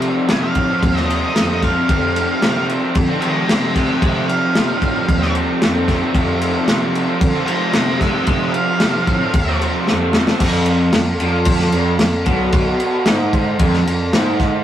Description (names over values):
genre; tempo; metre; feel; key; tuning
garage rock duo or trio; 113 BPM; 4/4; straight; F mixolydian; A4 = 441 Hz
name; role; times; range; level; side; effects
overdriven combo organ; sustained chords; 0.0-14.6 s; A4 to G5; -28 LUFS; left 2 dB; none
raw garage guitar; riff; 0.0-14.6 s; F2 to C4; -18 LUFS; right 1 dB; overdrive
dark bass clarinet; bass; 0.0-14.6 s; B1 to Eb3; -24 LUFS; equal; none
crunchy breakbeat drum kit; drums; 0.0-14.5 s; crash cymbal, kick drum, snare drum; -18 LUFS; equal; none
octave-fuzz lead guitar; melody; 0.3-9.6 s; Eb5 to C6; -22 LUFS; right 1 dB; distortion
room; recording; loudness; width
wet small room reverb, RT60 0.5 s; rough rehearsal-room recording, warm saturation; -14 LUFS; side -11 dB against mid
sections
0.0-10.4 A section; 10.4-14.6 B section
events
lead electric guitar solo 0.0-10.4; drum fill 9.9-10.4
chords
0.0 F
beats
0.28 0.82 1.35 | 1.88 2.42 2.95 3.48 | 4.01 4.55 5.08 5.61 | 6.14 6.67 7.21 7.74 | 8.27 8.80 9.34 9.87 | 10.40 10.93 11.47 12.00 | 12.53 13.06 13.60 14.13